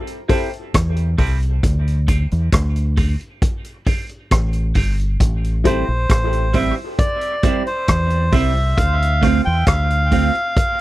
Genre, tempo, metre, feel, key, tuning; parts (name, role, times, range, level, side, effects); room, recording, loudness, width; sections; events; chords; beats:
dub reggae; 67 BPM; 4/4; straight; A minor; A4 = 440 Hz
vintage drum kit; drums; 0.1-10.8 s; hi-hat, kick drum, rim click; -18 LUFS; equal
semi-hollow electric guitar; accompaniment; 0.3-10.4 s; G3 to F4; -25 LUFS; right 6 dB; high-pass filter, dub echo
warm upright piano; stabs; 0.3-5.8 s; D4 to C5; -26 LUFS; left 5 dB; high-pass filter, dub echo
deep dub fingered electric bass; bass; 0.7-10.3 s; G1 to E2; -18 LUFS; equal
melodica; melody; 5.7-10.8 s; C5 to G5; -21 LUFS; equal; dub echo
little or no reverb; dry, close 1970s-style studio recording; -16 LUFS; side -17 dB against mid
0.0-10.8 A section
break 0.0-5.2; filter sweep 0.0-5.2
0.0 Am7; 1.6 Dm7; 5.2 Am7; 8.8 Dm7
0.74 | 1.63 2.53 3.42 4.31 | 5.21 6.10 6.99 7.89 | 8.78 9.67 10.57